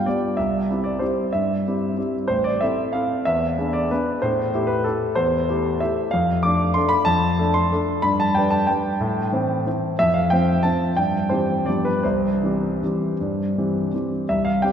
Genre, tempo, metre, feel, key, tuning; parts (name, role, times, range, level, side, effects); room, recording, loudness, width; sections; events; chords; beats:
classical, piano waltz; 153-200 BPM; 3/4; rubato; C major; A4 = 439 Hz
clear grand piano; solo; 0.0-14.7 s; A1 to D6; -19 LUFS; equal
wet cathedral reverb, RT60 4.2 s; recorded in a church or concert hall, faint mains hum; -19 LUFS; side -8 dB against mid
0.0-14.3 A section
0.4 C; 2.3 Am; 3.3 E7; 4.2 Am7; 6.1 Dm/F; 8.0 G; 9.0 Am; 10.0 F; 11.0 C/G; 11.7 G7; 12.0 C
0.06 | 0.37 0.69 1.01 | 1.33 1.65 1.98 | 2.30 2.62 2.95 | 3.26 3.58 3.90 | 4.22 4.53 4.85 | 5.17 5.48 5.80 | 6.12 6.44 6.76 | 7.07 7.38 7.71 | 8.03 8.34 8.68 | 9.00 9.32 9.66 | 9.99 10.31 10.65 | 10.97 11.31 11.67 | 12.04 12.42 12.81 | 13.19 13.55 13.93 | 14.29 14.63